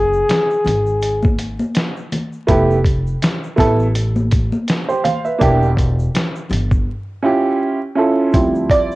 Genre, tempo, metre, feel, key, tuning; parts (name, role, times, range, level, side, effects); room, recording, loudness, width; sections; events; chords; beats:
hip hop, jazz-hop; 82 BPM; 4/4; swing 57% on 16ths; A4 = 440 Hz
breathy flugelhorn; melody; 0.0-1.4 s; G#4; -16 LUFS; left 2 dB
upright bass; bass; 0.0-8.7 s; E1 to D2; -19 LUFS; equal; transformer saturation
tube shaker and congas; percussion; 0.1-9.0 s; -24 LUFS; left 1 dB
lo-fi sampler-style drum kit; drums; 0.3-8.9 s; hi-hat, kick drum, snare drum; -18 LUFS; equal
warm upright piano; accompaniment; 2.5-9.0 s; F3 to F5; -15 LUFS; right 2 dB; cassette tape
light reverb, small room ambience; home recording on cassette, vinyl crackle, nothing above 10.4 kHz; -14 LUFS; side -19 dB against mid
0.0-8.3 A section
silent gap 6.9-8.3
0.0 N.C.; 2.5 Fmaj9#11; 5.4 Em7b5; 6.9 A7b13; 8.3 Dm11
0.29 1.02 1.75 | 2.48 3.21 3.95 4.68 | 5.41 6.14 6.87 7.61 | 8.34